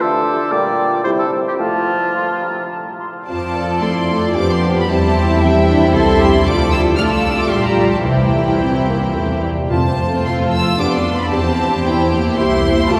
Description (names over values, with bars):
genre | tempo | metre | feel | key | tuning
quick classical-period movement for symphony orchestra | 106-117 BPM | 3/4 | rubato | F major | A4 = 440 Hz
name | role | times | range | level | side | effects
clear oboe | second line | 0.0-2.7 s | F4 to D5 | -25 LUFS | equal | none
silver concert flute | second line | 0.0-3.1 s | G5 to C6 | -27 LUFS | equal | none
warm clarinet | second line | 0.0-3.0 s | E4 to F4 | -31 LUFS | equal | none
mellow bassoon | accompaniment | 0.0-3.0 s | Bb2 to F3 | -27 LUFS | equal | none
warm French horn section | sustained chords | 0.0-13.0 s | G3 to G4 | -25 LUFS | equal | none
warm studio violin section | melody | 3.3-13.0 s | G5 to F6 | -25 LUFS | equal | none
clear studio violin section | second line | 3.3-13.0 s | E4 to E5 | -25 LUFS | equal | none
warm studio viola section | accompaniment | 3.3-13.0 s | E3 to G4 | -22 LUFS | equal | none
dark studio double bass section | bass | 3.3-13.0 s | Bb1 to F2 | -22 LUFS | equal | none
warm studio cello section | bass | 3.8-13.0 s | C4 to A4 | -23 LUFS | equal | none
timpani | percussion | 8.0-10.5 s | F2 to C3 | -26 LUFS | equal | none
room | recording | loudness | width
wet cathedral reverb, RT60 6.3 s | heard from further back in the room | -16 LUFS | mono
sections
0.0-3.3 A section; 3.3-13.0 A section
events
none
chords
0.0 Dm; 0.5 Gm7/Bb; 1.0 C; 1.6 F; 4.4 G7/F; 4.9 C/E; 6.5 Dm; 7.5 Gm7/Bb; 8.1 C; 9.7 F; 10.8 G7/F; 11.3 C/E